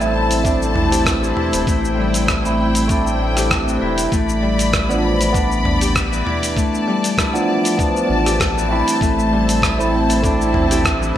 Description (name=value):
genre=organic downtempo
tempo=98 BPM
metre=4/4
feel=swing 53% on 16ths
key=A minor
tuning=A4 = 440 Hz
part: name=overdriven tine electric piano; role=accompaniment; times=0.0-11.2 s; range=F3 to E4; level=-21 LUFS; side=right 2 dB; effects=phaser, sidechain pumping, digital delay
part: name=rich studio string section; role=sustained chords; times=0.0-11.2 s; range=E4 to B5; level=-23 LUFS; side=left 3 dB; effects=sidechain pumping
part: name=Celtic harp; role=arpeggios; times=0.0-11.2 s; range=E3 to G4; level=-21 LUFS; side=left 2 dB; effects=low-pass filter, digital delay
part: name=round analog bass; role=bass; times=0.0-11.1 s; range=E1 to A1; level=-22 LUFS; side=equal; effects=none
part: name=dusty soul sampler-style drum kit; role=drums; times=0.0-11.2 s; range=cabasa, hi-hat, rim click, toms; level=-22 LUFS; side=equal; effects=small room ambience, gated reverb
part: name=electronic kick drum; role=drums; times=0.4-11.0 s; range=none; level=-22 LUFS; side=equal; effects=small room ambience
room=wet plate reverb, RT60 1.5 s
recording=bright 1980s-style digital production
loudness=-15 LUFS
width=side -11 dB against mid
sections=0.0-11.2 A section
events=none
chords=0.0 Am; 4.1 Bdim/A; 9.0 Am